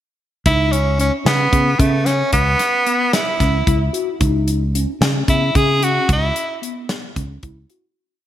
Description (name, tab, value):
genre	progressive instrumental, band music in an uneven meter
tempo	224 BPM (eighths)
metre	7/8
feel	straight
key	unclear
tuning	A4 = 438 Hz
part	edgy tenor saxophone	melody	0.5-6.6 s	A3 to G#4	-18 LUFS	right 1 dB	none
part	mellow tine electric piano	arpeggios	0.5-7.8 s	B3 to F#4	-25 LUFS	left 2 dB	medium stereo tremolo
part	fingered electric bass	bass	0.5-7.6 s	C#2 to C#3	-18 LUFS	equal	none
part	modern studio drum kit	drums	0.5-7.8 s	hi-hat, kick drum, snare drum	-20 LUFS	equal	none
room	moderate lush hall reverb, RT60 1.9 s, small room ambience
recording	bright 1980s-style digital production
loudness	-15 LUFS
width	side -12 dB against mid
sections	0.5-8.0 A section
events	fade-out 6.1-8.0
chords	0.5 Bsus4/C# (rootless)